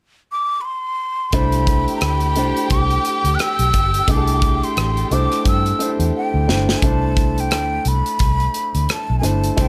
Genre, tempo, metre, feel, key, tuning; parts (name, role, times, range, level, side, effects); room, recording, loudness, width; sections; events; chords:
lush 1970s-style soul; 87 BPM; 4/4; swing 58% on 16ths; A4 = 436 Hz
breathy concert flute; melody; 0.3-9.7 s; G5 to F#6; -24 LUFS; equal
warm symphonic violin section; second line; 1.3-6.4 s; G4 to G5; -30 LUFS; equal
clear baby grand piano; accompaniment; 1.3-9.7 s; A3 to C5; -26 LUFS; equal
vintage muted fingered electric bass; bass; 1.3-9.7 s; G1 to G2; -22 LUFS; equal
modern studio drum kit; drums; 1.3-9.7 s; hi-hat, kick drum, rim click, snare drum; -23 LUFS; equal
little or no reverb; -18 LUFS; mono
0.0-1.3 A section; 1.3-6.8 B section; 6.8-9.7 C section
drum fill 6.1-6.8
0.0 N.C.; 1.3 C69